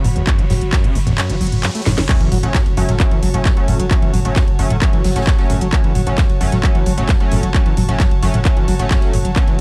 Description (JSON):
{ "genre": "driving peak-time techno", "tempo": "132 BPM", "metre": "4/4", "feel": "straight", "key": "F# minor", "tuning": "A4 = 438 Hz", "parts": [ { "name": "screaming distorted acid line", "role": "riff", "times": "0.0-9.6 s", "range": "E2 to A3", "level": "-25 LUFS", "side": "equal", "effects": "distortion, subtle chorus, sidechain pumping, tape echo" }, { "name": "growling 808-style bass", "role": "bass", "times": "0.0-9.6 s", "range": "F#1", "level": "-23 LUFS", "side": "equal", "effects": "tube saturation, sidechain pumping, low-pass filter" }, { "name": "analog drone", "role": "drone", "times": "0.0-9.6 s", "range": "F#3 to F#4", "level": "-32 LUFS", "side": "equal", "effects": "chorus, sidechain pumping" }, { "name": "open jazz drum kit", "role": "drums", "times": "0.0-9.5 s", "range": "hi-hat, snare drum", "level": "-39 LUFS", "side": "equal", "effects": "none" }, { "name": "techno drum kit", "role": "drums", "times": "0.0-9.6 s", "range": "crash cymbal, handclaps, hi-hat, ride cymbal, snare drum, toms", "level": "-24 LUFS", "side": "equal", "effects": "sidechain pumping on hats, sidechain pumping on toms, sidechain pumping on cymbals" }, { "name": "riser and impact", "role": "sound effects", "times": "0.0-3.9 s", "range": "none", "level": "-33 LUFS", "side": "equal", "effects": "none" }, { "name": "bright chamber string section", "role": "texture", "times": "0.0-9.6 s", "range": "F#4 to B5", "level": "-32 LUFS", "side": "equal", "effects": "sidechain pumping" }, { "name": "electronic kick drum", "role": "drums", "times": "0.3-9.5 s", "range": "none", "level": "-18 LUFS", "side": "equal", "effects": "none" }, { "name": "sync-sweep polysynth", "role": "stabs", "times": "2.1-9.5 s", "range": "F#3 to C#4", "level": "-27 LUFS", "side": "equal", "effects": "chorus, sidechain pumping, tape echo" } ], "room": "little or no reverb", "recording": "dark, warm production", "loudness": "-16 LUFS", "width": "mono", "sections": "0.0-2.1 A section; 2.1-9.6 B section", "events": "riser 0.0-2.1; kick drops out 1.2-2.1; drum fill 1.9; drop 2.1-9.6; impact 2.1-3.9", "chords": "0.0 F#5; 2.1 F#m" }